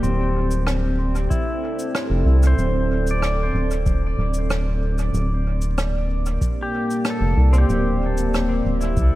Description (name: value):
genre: ambient dub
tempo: 94 BPM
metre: 4/4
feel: straight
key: unclear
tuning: A4 = 440 Hz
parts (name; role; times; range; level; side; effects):
- deep dark ambient pad; sustained chords; 0.0-9.2 s; Bb3 to D5; -26 LUFS; right 1 dB; chorus, built-in reverb
- pedal steel guitar; arpeggios; 0.0-9.2 s; C4 to G5; -28 LUFS; left 2 dB; tape echo
- round analog bass; bass; 0.0-9.1 s; D1 to C2; -19 LUFS; equal; none
- cabasa and rim click; drums; 0.0-9.1 s; none; -30 LUFS; equal; dub echo
- electronic kick drum; drums; 1.3-9.1 s; none; -22 LUFS; equal; none
room: light reverb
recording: vinyl crackle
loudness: -18 LUFS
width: side -16 dB against mid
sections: 0.0-9.2 A section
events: none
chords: 0.0 D7(no3); 5.1 Gm/D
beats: | 0.03 0.67 1.31 1.95 | 2.59 3.22 3.86 4.50 | 5.14 5.78 6.42 7.05 | 7.69 8.33 8.97